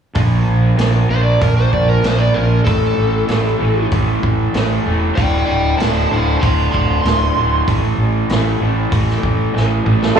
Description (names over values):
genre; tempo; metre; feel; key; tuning
blues rock power trio and southern rock; 96 BPM; 4/4; straight; unclear; A4 = 440 Hz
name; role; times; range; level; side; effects
vintage drum kit; drums; 0.1-10.2 s; hi-hat, kick drum, snare drum, toms; -22 LUFS; right 1 dB; none
raw garage guitar; riff; 0.2-10.2 s; D2 to Bb3; -18 LUFS; equal; overdrive, slapback echo
fuzz fingered electric bass; bass; 0.2-10.2 s; D1 to Bb1; -16 LUFS; right 1 dB; overdrive
overdriven slide guitar; melody; 1.1-7.7 s; A4 to C6; -20 LUFS; equal; slapback echo, analog delay
overdriven tonewheel organ; sustained chords; 10.2 s; A3 to F4; -8 LUFS; right 5 dB; slow rotary speaker, chorus vibrato
room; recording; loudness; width
studio ambience; live gig heard through the venue's PA, club ambience, small room reverb; -13 LUFS; side -7 dB against mid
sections
0.2-10.2 A section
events
drum fill 9.5-10.2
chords
0.2 Bb5; 2.7 A5; 5.2 D5; 7.7 A5